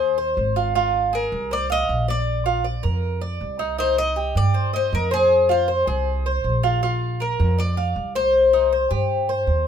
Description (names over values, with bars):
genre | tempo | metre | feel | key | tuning
latin | 158 BPM | 4/4 | straight | unclear | A4 = 445 Hz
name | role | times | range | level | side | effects
Cuban tres | melody | 0.0-9.4 s | Ab4 to Eb5 | -23 LUFS | left 6 dB | none
Cuban tres | arpeggios | 0.0-9.7 s | Eb4 to F5 | -22 LUFS | right 2 dB | none
upright bass | bass | 0.0-9.7 s | Ab1 to G2 | -24 LUFS | right 1 dB | none
room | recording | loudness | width
moderate small room ambience, RT60 0.5 s | minimal, uncompressed stereo recording | -18 LUFS | side -8 dB against mid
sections
0.0-9.7 A section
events
none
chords
0.0 Ab; 0.7 Fm/Ab; 2.3 Bb; 3.8 Cm; 5.3 Fm; 6.8 Bb; 8.3 Cm